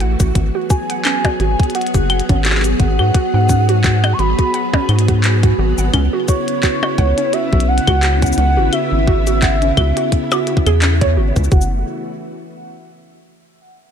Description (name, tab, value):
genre	IDM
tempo	86 BPM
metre	4/4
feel	swing 56% on 16ths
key	unclear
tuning	A4 = 441 Hz
part	soft string machine	sustained chords	0.0-11.8 s	C#3 to G#4	-21 LUFS	equal	ensemble chorus
part	warbly dusty pluck	arpeggios	0.0-11.8 s	C#4 to F#5	-23 LUFS	right 6 dB	lush chorus, tape echo
part	rubbery square bass	bass	0.0-11.8 s	F#1 to G#2	-15 LUFS	equal	none
part	glitchy drum kit	drums	0.0-11.7 s	cabasa, claves, handclaps, hi-hat, percussion blips	-21 LUFS	left 2 dB	tape echo
part	electronic kick drum	drums	0.2-11.7 s	none	-15 LUFS	equal	none
part	warm velvety synth lead	melody	0.7-11.8 s	C#5 to C#6	-22 LUFS	equal	chorus, vintage 12-bit sampler grit, tape echo
room	little or no reverb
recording	none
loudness	-13 LUFS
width	side -8 dB against mid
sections	0.0-11.5 A section; 11.5-13.9 B section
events	none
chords	0.4 G#m7; 5.9 C#m7; 11.5 F#m7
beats	| 0.35 1.05 1.75 2.45 | 3.14 3.84 4.54 5.24 | 5.93 6.63 7.33 8.03 | 8.73 9.42 10.12 10.82 | 11.52